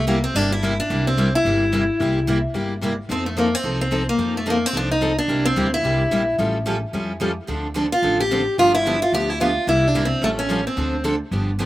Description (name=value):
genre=acoustic string swing (jazz manouche)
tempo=219 BPM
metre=4/4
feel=swing 56% on 8ths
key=C mixolydian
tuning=A4 = 440 Hz
part: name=picked steel-string acoustic guitar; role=melody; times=0.0-11.0 s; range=A3 to G4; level=-20 LUFS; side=equal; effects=none
part: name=koto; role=second line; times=0.0-0.6 s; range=none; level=barely audible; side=none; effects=none
part: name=upright bass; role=bass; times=0.0-11.7 s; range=G1 to F2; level=-25 LUFS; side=equal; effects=none
part: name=picked steel-string acoustic guitar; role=accompaniment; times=0.1-11.7 s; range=C3 to A4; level=-26 LUFS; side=left 2 dB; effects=none
part: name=picked steel-string acoustic guitar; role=accompaniment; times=0.1-11.7 s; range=C3 to A4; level=-28 LUFS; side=right 4 dB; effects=none
room=little or no reverb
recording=recorded outdoors, with no room sound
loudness=-18 LUFS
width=side -15 dB against mid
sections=0.0-11.7 A section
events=none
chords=0.0 C7; 3.1 F7; 5.3 C7; 6.4 Aaug7; 7.5 Dm7; 8.6 G7; 9.7 C7; 10.2 Aaug7; 10.8 Dm7